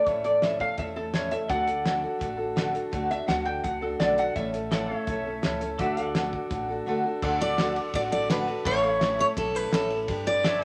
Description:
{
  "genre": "honky-tonk and classic country",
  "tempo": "168 BPM",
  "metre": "4/4",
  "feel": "straight",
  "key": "D major",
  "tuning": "A4 = 441 Hz",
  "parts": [
    { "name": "lap resonator guitar", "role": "second line", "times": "0.0-5.4 s", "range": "A4 to G5", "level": "-29 LUFS", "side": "equal", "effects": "none" },
    { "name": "picked steel-string acoustic guitar", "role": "accompaniment", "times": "0.0-10.6 s", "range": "A2 to B4", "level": "-32 LUFS", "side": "equal", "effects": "none" },
    { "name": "upright bass", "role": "bass", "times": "0.1-10.6 s", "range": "G1 to E2", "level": "-42 LUFS", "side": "equal", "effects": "none" },
    { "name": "cloth-damped thuddy drum kit", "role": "drums", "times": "0.1-10.5 s", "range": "crash cymbal, hi-hat, kick drum, ride cymbal, snare drum", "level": "-33 LUFS", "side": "equal", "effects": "none" },
    { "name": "pedal steel guitar", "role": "sustained chords", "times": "1.5-10.6 s", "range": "G4 to F#5", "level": "-39 LUFS", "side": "equal", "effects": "none" },
    { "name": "picked steel-string acoustic guitar", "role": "melody", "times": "7.4-10.6 s", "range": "A4 to D5", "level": "-28 LUFS", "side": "equal", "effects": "none" }
  ],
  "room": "wet club reverb, RT60 0.7 s",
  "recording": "none",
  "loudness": "-27 LUFS",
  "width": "mono",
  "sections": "0.0-7.2 A section; 7.2-10.6 B section",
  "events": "resonator guitar played with a steel bar solo 0.0-7.2",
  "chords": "0.0 A; 1.5 D; 4.4 A; 5.8 D; 8.7 A; 10.1 G"
}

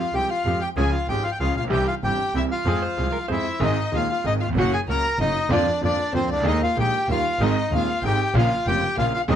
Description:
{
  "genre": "tango",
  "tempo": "190 BPM",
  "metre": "3/4",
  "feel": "rubato",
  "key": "F harmonic minor, Ab major from 3.6 s",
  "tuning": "A4 = 439 Hz",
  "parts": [
    { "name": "bandoneon", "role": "melody", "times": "0.0-9.4 s", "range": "C4 to Bb5", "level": "-24 LUFS", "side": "equal", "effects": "none" },
    { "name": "warm violin", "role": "second line", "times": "0.0-9.4 s", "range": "C5 to Bb5", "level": "-30 LUFS", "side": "left 6 dB", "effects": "none" },
    { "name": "bright concert grand piano", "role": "accompaniment", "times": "0.1-9.4 s", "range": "Eb1 to Ab4", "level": "-25 LUFS", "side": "equal", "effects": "none" },
    { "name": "clear double bass", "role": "bass", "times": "0.1-9.4 s", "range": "F1 to F2", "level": "-26 LUFS", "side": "right 1 dB", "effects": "none" },
    { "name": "muted studio string section", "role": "stabs", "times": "0.2-9.4 s", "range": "G3 to Ab4", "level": "-35 LUFS", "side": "right 1 dB", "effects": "none" },
    { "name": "hollow-body jazz guitar", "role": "second line", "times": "2.8-3.6 s", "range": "Bb4 to C5", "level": "-32 LUFS", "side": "right 2 dB", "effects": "none" }
  ],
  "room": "moderate studio reverb, RT60 0.5 s",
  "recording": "none",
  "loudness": "-20 LUFS",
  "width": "side -9 dB against mid",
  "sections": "0.0-3.6 A section; 3.6-9.4 B section",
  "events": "none",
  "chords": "0.0 Fmadd9; 0.8 Db; 1.7 C; 2.7 Fm; 3.6 Ab; 4.6 Gb; 5.5 Bb/F; 6.5 Ebsus4; 7.1 Eb; 7.4 Ab; 8.4 Bbm"
}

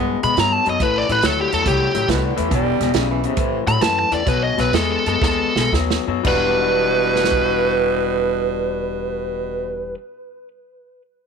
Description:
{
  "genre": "electric blues shuffle",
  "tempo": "112-140 BPM",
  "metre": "4/4",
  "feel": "swing 68% on 8ths",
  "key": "E minor",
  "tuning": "A4 = 440 Hz",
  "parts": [
    { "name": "growling tenor saxophone", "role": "second line", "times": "0.0-3.6, 6.3-9.9 s", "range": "B2 to B3", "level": "-23 LUFS", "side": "right 13 dB", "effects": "none" },
    { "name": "electric guitar through a small old amp", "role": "riff", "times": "0.0-10.0 s", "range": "E2 to F#4", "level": "-22 LUFS", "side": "left 15 dB", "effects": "none" },
    { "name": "upright bass", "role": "bass", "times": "0.0-9.9 s", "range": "E1 to B2", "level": "-26 LUFS", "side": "equal", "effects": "none" },
    { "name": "biting lead guitar", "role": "melody", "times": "0.2-9.9 s", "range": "G4 to B5", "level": "-20 LUFS", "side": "equal", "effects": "overdrive" },
    { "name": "natural country drum kit", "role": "drums", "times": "0.2-7.5 s", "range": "crash cymbal, hi-hat, kick drum, snare drum", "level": "-24 LUFS", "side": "right 4 dB", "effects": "none" }
  ],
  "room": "light reverb, small room ambience",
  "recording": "1960s-style stereo with parts hard left and right",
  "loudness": "-16 LUFS",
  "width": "side -6 dB against mid",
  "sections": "0.0-6.2 A section; 6.2-10.5 B section",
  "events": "slowing down 2.5-6.2; drum fill 5.2-6.2",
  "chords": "0.0 B5; 0.8 Am7; 2.5 Em; 3.4 A5; 4.3 B7; 6.2 Em9"
}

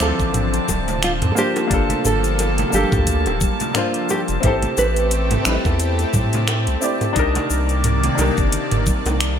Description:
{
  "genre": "sunset chillout",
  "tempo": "88 BPM",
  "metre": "4/4",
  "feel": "swing 57% on 16ths",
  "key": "A phrygian",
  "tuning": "A4 = 440 Hz",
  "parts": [
    { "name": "nylon-string guitar", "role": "melody", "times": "0.0-6.8 s", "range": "E4 to C5", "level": "-25 LUFS", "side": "right 1 dB", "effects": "vintage 12-bit sampler grit, ping-pong delay, shimmer reverb" },
    { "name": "warm baby grand piano", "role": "accompaniment", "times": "0.0-9.4 s", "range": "Bb3 to D5", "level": "-24 LUFS", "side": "moving between left 5 dB and right 3 dB", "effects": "auto-pan, ping-pong delay, shimmer reverb" },
    { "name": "lush unison pad", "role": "sustained chords", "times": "0.0-9.4 s", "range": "C3 to D5", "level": "-24 LUFS", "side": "left 1 dB", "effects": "chorus, phaser, shimmer reverb" },
    { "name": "round analog bass", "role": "bass", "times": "0.0-9.4 s", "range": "D1 to A2", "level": "-21 LUFS", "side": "equal", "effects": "none" },
    { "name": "smooth R&B drum kit", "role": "drums", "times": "0.0-9.4 s", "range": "finger snaps, hi-hat, shaker, toms", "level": "-24 LUFS", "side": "equal", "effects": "gated reverb" },
    { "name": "congas and bongos", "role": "percussion", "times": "0.0-9.2 s", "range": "none", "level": "-29 LUFS", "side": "right 2 dB", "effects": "none" },
    { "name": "drifting glass-harmonics texture", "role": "texture", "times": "0.0-9.4 s", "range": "A5", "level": "-30 LUFS", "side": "right 1 dB", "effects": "chorus, built-in reverb, shimmer reverb" },
    { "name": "electronic kick drum", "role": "drums", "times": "0.2-9.0 s", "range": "none", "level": "-22 LUFS", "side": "equal", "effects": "none" }
  ],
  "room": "light reverb",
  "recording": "bright 1980s-style digital production",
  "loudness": "-16 LUFS",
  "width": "side -8 dB against mid",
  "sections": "0.0-9.4 A section",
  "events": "none",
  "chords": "0.0 Dm9; 1.4 Gm9; 4.4 Am9; 7.2 Cm9"
}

